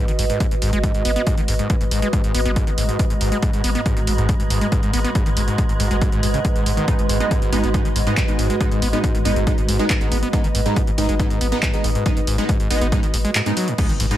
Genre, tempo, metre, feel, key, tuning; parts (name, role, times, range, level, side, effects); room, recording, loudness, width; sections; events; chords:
driving peak-time techno; 139 BPM; 4/4; straight; G# minor; A4 = 439 Hz
screaming distorted acid line; riff; 0.0-14.2 s; G#2 to B3; -25 LUFS; equal; distortion, chorus, sidechain pumping, tape echo
swarming drone; drone; 1.0-13.8 s; G#2 to G#3; -29 LUFS; left 1 dB; built-in reverb, sidechain pumping
warbly tape-like pad; texture; 0.0-14.2 s; F#4 to D#5; -26 LUFS; right 2 dB; chorus, built-in reverb, phaser, sidechain pumping
warm sub bass; bass; 0.1-14.1 s; G#1; -24 LUFS; equal; overdrive, sidechain pumping, low-pass filter
punchy analog drum machine; drums; 0.1-14.2 s; crash cymbal, handclaps, hi-hat, ride cymbal; -27 LUFS; right 1 dB; overdrive
electronic kick drum; drums; 0.4-13.9 s; -20 LUFS; equal; overdrive
rave stab; stabs; 6.9-14.2 s; G#3 to D#4; -25 LUFS; right 2 dB; chorus, built-in reverb, sidechain pumping, tape echo
impact; sound effects; 13.8-14.2 s; -28 LUFS; left 1 dB
little or no reverb; -17 LUFS; side -13 dB against mid
0.0-13.8 A section
impact 13.8-14.2
0.0 G#m